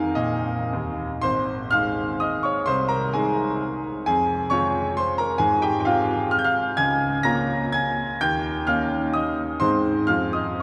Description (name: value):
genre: classical, romantic triple-time dance for piano with dotted rhythms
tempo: 103-140 BPM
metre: 3/4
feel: rubato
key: Ab major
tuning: A4 = 442 Hz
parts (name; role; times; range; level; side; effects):
- bright grand piano; solo; 0.0-10.6 s; Ab1 to Bb6; -23 LUFS; equal; none
room: wet cathedral reverb, RT60 5.6 s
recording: none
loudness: -23 LUFS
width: mono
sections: 0.0-1.2 A section; 1.2-10.6 B section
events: none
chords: 0.0 Eb5; 1.2 Ab; 2.7 Ab/C; 4.1 Fm; 5.4 Fm/Ab; 6.8 Bbm7/Db; 8.2 Eb7; 9.6 Ab; 10.1 Fm